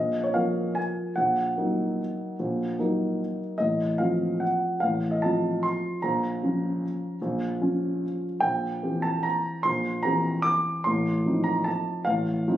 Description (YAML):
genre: classical, piano waltz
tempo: 149 BPM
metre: 3/4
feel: uneven beats, rubato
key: Bb minor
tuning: A4 = 442 Hz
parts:
  - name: warm concert grand piano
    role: solo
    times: 0.0-12.6 s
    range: A1 to D6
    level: -24 LUFS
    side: equal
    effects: none
room: light reverb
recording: recorded on a phone in the room, club reverb, compression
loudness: -24 LUFS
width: side -12 dB against mid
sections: 0.0-12.6 A section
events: none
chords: 0.0 Bbm; 1.2 Ebm/Bb; 3.6 F7/A; 6.0 Bbm; 8.4 C7/Bb; 10.8 F7/A